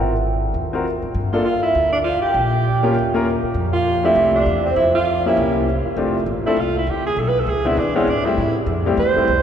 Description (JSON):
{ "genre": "jazz, small-group swing and bop", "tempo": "199 BPM", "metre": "4/4", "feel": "swing 61% on 8ths", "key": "F major", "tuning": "A4 = 441 Hz", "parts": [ { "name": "vibraphone with soft mallets", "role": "melody", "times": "0.0-5.7 s", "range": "C5 to G5", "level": "-21 LUFS", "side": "right 2 dB", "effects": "none" }, { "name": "clear grand piano", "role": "accompaniment", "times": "0.0-9.3 s", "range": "G3 to Bb4", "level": "-21 LUFS", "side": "left 2 dB", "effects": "none" }, { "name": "upright bass", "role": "bass", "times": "0.0-9.4 s", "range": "F1 to A2", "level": "-23 LUFS", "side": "equal", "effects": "none" }, { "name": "bright alto saxophone", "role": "second line", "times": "1.3-9.4 s", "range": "C4 to C5", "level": "-22 LUFS", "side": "right 2 dB", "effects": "none" } ], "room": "wet cathedral reverb, RT60 6.8 s", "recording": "recorded in a church or concert hall", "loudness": "-16 LUFS", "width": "side -8 dB against mid", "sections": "0.0-6.0 A section; 6.0-9.4 B section", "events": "alto saxophone solo 6.0-9.4", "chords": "0.0 Ab13; 1.1 G7(no3); 2.4 Bbm; 3.0 Ebsus2; 3.6 F6; 5.4 C7b9; 6.0 F6; 7.2 Bmadd9; 7.8 E7b13; 8.4 Am7" }